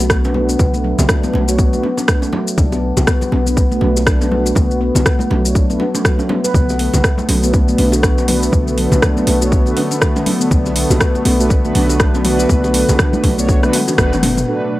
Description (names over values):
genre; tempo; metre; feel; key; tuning
afro house; 121 BPM; 4/4; swing 58% on 16ths; B minor; A4 = 443 Hz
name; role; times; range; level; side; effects
handpan; arpeggios; 0.0-14.3 s; F#3 to B4; -19 LUFS; left 2 dB; sidechain pumping, analog delay
mellow synth brass; stabs; 0.0-14.8 s; A3 to C#5; -20 LUFS; right 2 dB; chorus, sidechain pumping, analog delay
warm 808-style bass; bass; 0.0-14.4 s; F#1 to B1; -18 LUFS; equal; sidechain pumping
house drum kit; drums; 0.0-14.6 s; crash cymbal, hi-hat, rim click, shaker, toms; -20 LUFS; equal; low-pass filter on perc, studio reverb, low-pass filter on snare, low-pass filter on cymbals, low-pass filter on hats, low-pass filter on toms
bongos; percussion; 0.0-14.3 s; none; -25 LUFS; right 2 dB; none
electronic kick drum; drums; 0.1-14.1 s; none; -15 LUFS; equal; studio reverb
congas; percussion; 0.1-14.3 s; none; -24 LUFS; left 1 dB; none
warm analog pad; sustained chords; 6.5-14.8 s; B2 to C#5; -21 LUFS; equal; chorus, sidechain pumping
room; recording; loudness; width
digital ambience; dry, gritty hardware recording; -12 LUFS; side -17 dB against mid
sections
0.0-14.5 A section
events
filter sweep on analog polysynth 0.0-14.5; drum fill 13.5-14.5; band accent 14.0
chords
0.0 Bm7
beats
0.10 | 0.59 1.09 1.59 2.08 | 2.58 3.07 3.57 4.07 | 4.56 5.06 5.55 6.05 | 6.54 7.04 7.54 8.03 | 8.53 9.02 9.52 10.02 | 10.51 11.01 11.50 12.00 | 12.49 12.99 13.49 13.98 | 14.48